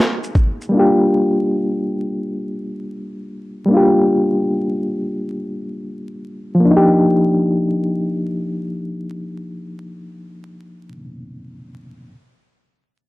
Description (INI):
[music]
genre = lo-fi hip hop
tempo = free time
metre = none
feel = none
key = Eb major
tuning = A4 = 441 Hz
[part]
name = reed electric piano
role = accompaniment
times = 0.0-12.1 s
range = F3 to Ab4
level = -17 LUFS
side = left 1 dB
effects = fast tremolo, cassette tape, low-pass filter
[part]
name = boom bap sampler-style drum kit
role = drums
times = 0.0-0.7 s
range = kick drum, shaker, snare drum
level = -16 LUFS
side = equal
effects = none
[sound]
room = light reverb, digital ambience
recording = dry, gritty hardware recording, transformer saturation, vinyl crackle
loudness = -15 LUFS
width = side -19 dB against mid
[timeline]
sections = 0.0-6.6 A section; 6.6-9.6 B section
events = none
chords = 0.0 Abmadd9; 0.7 Gm7; 6.6 Ebmaj9